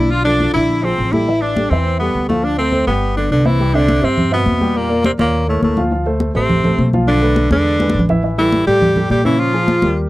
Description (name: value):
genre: Afro-Cuban jazz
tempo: 207 BPM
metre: 4/4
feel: straight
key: A minor, C major from 3.6 s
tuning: A4 = 440 Hz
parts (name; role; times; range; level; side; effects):
- clear tenor saxophone; melody; 0.0-10.0 s; A3 to G4; -17 LUFS; left 2 dB; none
- growling tenor saxophone; second line; 0.0-10.0 s; A2 to F4; -22 LUFS; right 4 dB; none
- dark baby grand piano; accompaniment; 0.0-10.1 s; Db3 to G5; -20 LUFS; equal; none
- upright bass; bass; 0.0-10.1 s; G1 to Bb2; -19 LUFS; equal; none
- congas; percussion; 0.1-10.1 s; none; -19 LUFS; left 1 dB; none
room: little or no reverb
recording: dry, close 1970s-style studio recording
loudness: -13 LUFS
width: side -17 dB against mid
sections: 0.0-3.6 A section; 3.6-10.1 B section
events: drum fill 7.8-8.2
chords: 0.1 Bm7b5; 0.7 Bb7; 1.3 Am7; 2.4 Dm7; 3.0 G; 3.6 Cadd9; 4.8 Em7b5; 5.3 Eb5; 5.9 Dm7; 7.1 Bm7b5; 7.7 E7; 8.2 A5; 9.4 Bbm7